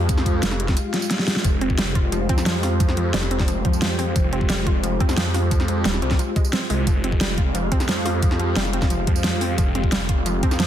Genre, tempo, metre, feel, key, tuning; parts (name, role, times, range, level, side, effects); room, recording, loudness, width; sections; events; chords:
dark technical drum and bass; 177 BPM; 4/4; straight; F minor; A4 = 441 Hz
dark analog pad; sustained chords; 0.0-10.7 s; Ab3 to F5; -28 LUFS; equal; chorus, sidechain pumping
phased detuned saw bass; bass; 0.0-10.7 s; Eb1 to F2; -24 LUFS; equal; phaser, overdrive, sidechain pumping
dubstep drum kit; drums; 0.1-10.7 s; hi-hat, snare drum, tambourine; -25 LUFS; equal; overdrive
electronic kick drum; drums; 0.1-10.5 s; -21 LUFS; equal; overdrive
wide unison pluck; arpeggios; 1.4-10.7 s; F3 to F4; -28 LUFS; right 2 dB; sidechain pumping, digital delay
light reverb; dense, heavily limited modern master; -18 LUFS; side -10 dB against mid
0.0-10.7 A section
drum fill 0.9-1.4
0.0 Fmadd9